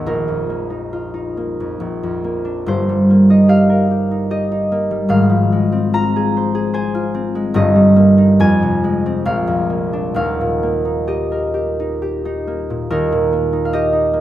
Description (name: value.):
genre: classical, solo harp piece.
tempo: 64-78 BPM.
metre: 3/4.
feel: rubato.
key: Eb major.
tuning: A4 = 440 Hz.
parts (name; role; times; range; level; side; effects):
concert harp; solo; 0.0-14.2 s; Eb1 to Bb5; -14 LUFS; equal; none.
room: moderate recital hall reverb, RT60 1.4 s.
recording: none.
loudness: -14 LUFS.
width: side -13 dB against mid.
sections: 0.0-12.9 A section; 12.9-14.2 B section.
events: none.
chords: 0.0 Bbsus4; 1.8 Bb; 2.7 Eb/G; 5.1 Fm/Ab; 7.5 Eb/G; 8.4 Fm; 9.2 Bb7; 10.1 Eb.